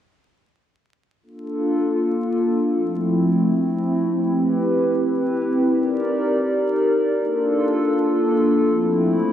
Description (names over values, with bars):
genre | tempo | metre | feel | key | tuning
drum and bass | free time | none | none | unclear | A4 = 440 Hz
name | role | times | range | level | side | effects
warbly tape-like pad | sustained chords | 1.4-9.3 s | F3 to D5 | -18 LUFS | equal | chorus, built-in reverb
room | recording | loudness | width
moderate plate reverb, RT60 2.5 s | vinyl crackle | -18 LUFS | side -10 dB against mid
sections
1.2-9.3 A section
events
none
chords
1.2 Bbmaj7; 2.7 Fmaj7; 4.2 Cmaj7; 5.7 Ebmaj7; 7.2 Bbmaj7; 8.6 Fmaj7